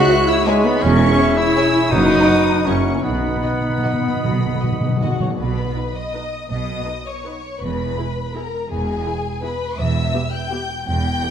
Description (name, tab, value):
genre	classical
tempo	145-177 BPM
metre	3/4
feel	rubato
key	B major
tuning	A4 = 440 Hz
part	dark symphonic violin section	melody	0.0-11.3 s	F#5 to G6	-28 LUFS	left 3 dB	none
part	bright concert flute	second line	0.0-5.2 s	E5 to F#5	-29 LUFS	left 3 dB	none
part	dark clarinet	second line	0.0-5.2 s	D#4 to G#4	-24 LUFS	left 2 dB	none
part	warm cor anglais	second line	0.0-5.3 s	A#4 to D#5	-28 LUFS	right 2 dB	none
part	warm bassoon	accompaniment	0.0-5.2 s	C#4 to E4	-26 LUFS	right 1 dB	none
part	warm symphonic viola section	accompaniment	0.0-11.3 s	G#3 to B4	-23 LUFS	equal	none
part	mellow French horn section	sustained chords	0.0-11.3 s	G#3 to G#4	-24 LUFS	left 3 dB	none
part	warm trumpet	stabs	0.0-5.2 s	G#3 to F#4	-24 LUFS	right 1 dB	none
part	mellow tuba	bass	0.0-4.5 s	E1 to B1	-26 LUFS	right 3 dB	none
part	rich symphonic cello section	bass	0.0-11.2 s	E2 to B2	-24 LUFS	right 2 dB	none
part	rich symphonic double bass section	bass	0.0-11.2 s	E1 to B1	-26 LUFS	right 3 dB	none
part	rich studio violin section	second line	0.1-11.3 s	E4 to G5	-28 LUFS	left 4 dB	none
part	timpani	percussion	1.9-5.3 s	F#2 to B2	-23 LUFS	equal	none
room	wet concert hall reverb, RT60 1.8 s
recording	dark, warm production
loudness	-16 LUFS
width	side -8 dB against mid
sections	0.0-5.4 A section; 5.4-11.3 B section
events	timpani fill 3.0-5.4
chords	0.0 C#m; 0.8 C#m/E; 1.9 B/F#; 2.7 F#; 3.0 B; 7.6 E; 9.8 Em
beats	0.10 0.47 | 0.83 1.19 1.56 | 1.92 2.28 2.67 | 3.04 3.43 3.83 | 4.22 4.61 5.01 | 5.39 5.76 6.14 | 6.50 6.86 7.25 | 7.61 7.97 8.35 | 8.70 9.06 9.43 | 9.78 10.14 10.52 | 10.87 11.23